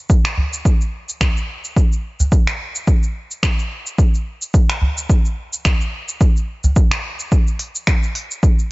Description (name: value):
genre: downtempo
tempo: 108 BPM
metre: 4/4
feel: swing 56% on 16ths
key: none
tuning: none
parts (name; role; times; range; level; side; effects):
- deep house drum kit; drums; 0.1-8.7 s; cabasa, finger snaps, hi-hat; -24 LUFS; equal; none
- electronic kick drum; drums; 0.1-8.6 s; none; -14 LUFS; equal; none
- udu; percussion; 0.4-6.7 s; none; -18 LUFS; equal; none
room: little or no reverb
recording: dry, gritty hardware recording, nothing above 7.8 kHz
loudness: -16 LUFS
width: side -22 dB against mid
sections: 0.0-8.7 A section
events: none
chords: none